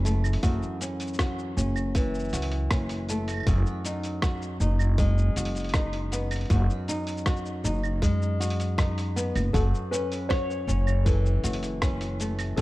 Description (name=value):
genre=folktronica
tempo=79 BPM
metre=4/4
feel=straight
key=F# dorian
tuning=A4 = 435 Hz
part: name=flamenco guitar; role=arpeggios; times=0.0-12.6 s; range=F#2 to F#4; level=-31 LUFS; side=equal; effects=digital delay
part: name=upright bass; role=bass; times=0.0-12.6 s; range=F#1 to F#2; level=-26 LUFS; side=equal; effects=none
part: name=lo-fi sampler-style drum kit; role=drums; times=0.1-12.6 s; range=claves, hi-hat, rim click, shaker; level=-34 LUFS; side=equal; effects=none
part: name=electronic kick drum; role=drums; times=0.4-12.6 s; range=none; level=-25 LUFS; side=equal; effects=none
part: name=felt-muted upright piano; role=melody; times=9.5-12.6 s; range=A4 to C#5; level=-32 LUFS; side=left 3 dB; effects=digital delay
room=small room ambience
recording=dark, warm production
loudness=-24 LUFS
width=side -18 dB against mid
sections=0.0-12.6 A section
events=none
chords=0.0 F#m7; 3.5 B6/F#; 9.5 F#m7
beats=| 0.43 1.19 1.95 2.71 | 3.47 4.22 4.99 5.74 | 6.50 7.26 8.02 8.78 | 9.54 10.30 11.06 11.82 | 12.58